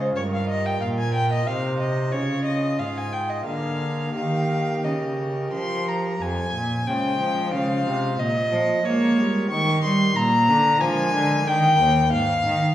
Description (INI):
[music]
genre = classical, baroque-style sonata movement with continuo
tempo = 91 BPM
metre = 3/4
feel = rubato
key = unclear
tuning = A4 = 440 Hz
[part]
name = warm violin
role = melody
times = 0.0-12.7 s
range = C5 to Db6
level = -23 LUFS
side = left 2 dB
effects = none
[part]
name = pipe organ, foundations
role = accompaniment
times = 0.0-12.7 s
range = Eb2 to C5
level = -27 LUFS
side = right 1 dB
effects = none
[part]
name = rich cello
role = bass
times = 0.0-12.7 s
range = Eb2 to Bb3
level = -24 LUFS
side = right 1 dB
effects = none
[sound]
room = wet recital hall reverb, RT60 1.3 s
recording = heard from further back in the room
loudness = -20 LUFS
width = side -12 dB against mid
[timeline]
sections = 0.0-6.2 A section; 6.2-12.7 B section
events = none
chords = 0.2 Gm7; 1.5 Cm; 2.1 Db; 3.5 Bb7/D; 4.1 Eb; 6.2 Fm; 8.2 Bbm7; 9.5 Eb7; 10.2 Bb7; 11.5 Eb; 12.1 Ab5